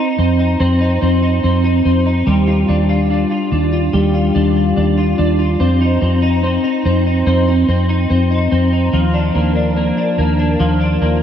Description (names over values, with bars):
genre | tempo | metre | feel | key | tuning
dream pop | 72 BPM | 4/4 | straight | unclear | A4 = 441 Hz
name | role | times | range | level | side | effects
twelve-string electric guitar | arpeggios | 0.0-11.2 s | F3 to F4 | -15 LUFS | left 1 dB | ensemble chorus, ping-pong delay
vintage muted fingered electric bass | bass | 0.2-11.2 s | Eb2 to F2 | -16 LUFS | right 1 dB | none
room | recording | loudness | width
wet lush hall reverb, RT60 2.7 s | dreamy mix soaked in reverb | -12 LUFS | side -9 dB against mid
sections
0.0-11.2 A section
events
none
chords
0.0 F5; 2.3 Ebmaj9; 5.6 F5; 8.9 Ebsus2